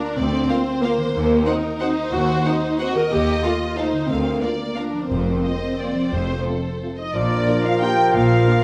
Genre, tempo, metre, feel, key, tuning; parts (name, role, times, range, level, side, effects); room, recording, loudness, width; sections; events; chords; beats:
classical, orchestral ballroom waltz; 181 BPM; 3/4; uneven beats, rubato; Bb major; A4 = 441 Hz
warm symphonic violin section; melody; 0.0-8.6 s; Bb4 to F5; -33 LUFS; equal
dark symphonic viola section; accompaniment; 0.0-8.6 s; Bb3 to Bb4; -25 LUFS; equal
concert harp; arpeggios; 0.0-8.6 s; Bb2 to Bb5; -31 LUFS; equal
clear symphonic cello section; bass; 0.2-8.4 s; D2 to Bb2; -30 LUFS; equal
rich symphonic double bass section; bass; 0.2-8.4 s; F1 to Eb2; -29 LUFS; equal
warm symphonic violin section; second line; 0.5-8.6 s; A4 to G5; -32 LUFS; equal
mellow French horn section; sustained chords; 0.5-8.6 s; A3 to G4; -30 LUFS; equal
timpani; percussion; 5.1-6.6 s; F2; -32 LUFS; equal
mellow small flute group; second line; 7.0-8.6 s; D5 to G5; -27 LUFS; equal
warm trumpet section; stabs; 7.0-8.6 s; D5 to G5; -28 LUFS; equal
clear oboe; second line; 7.1-8.6 s; Bb4; -31 LUFS; equal
mellow clarinet; second line; 7.1-8.6 s; F4; -30 LUFS; equal
mellow bassoon; accompaniment; 7.1-8.6 s; F3; -29 LUFS; equal
mellow trombone section; sustained chords; 7.5-8.6 s; F3 to Bb3; -32 LUFS; equal
moderate scoring stage reverb, RT60 1.6 s; -21 LUFS; mono
0.0-7.1 A section; 7.1-8.6 B section
0.0 Bb/D; 1.2 Cm7b5/Eb; 3.1 F7/Eb; 4.1 Bb/D; 5.1 Fsus4; 6.1 F; 7.1 Bb
| 0.18 0.50 0.84 | 1.15 1.48 1.81 | 2.13 2.46 2.80 | 3.12 3.44 3.78 | 4.10 4.43 4.78 | 5.10 5.44 5.79 | 6.12 6.46 6.82 | 7.15 7.48 7.82 | 8.15 8.47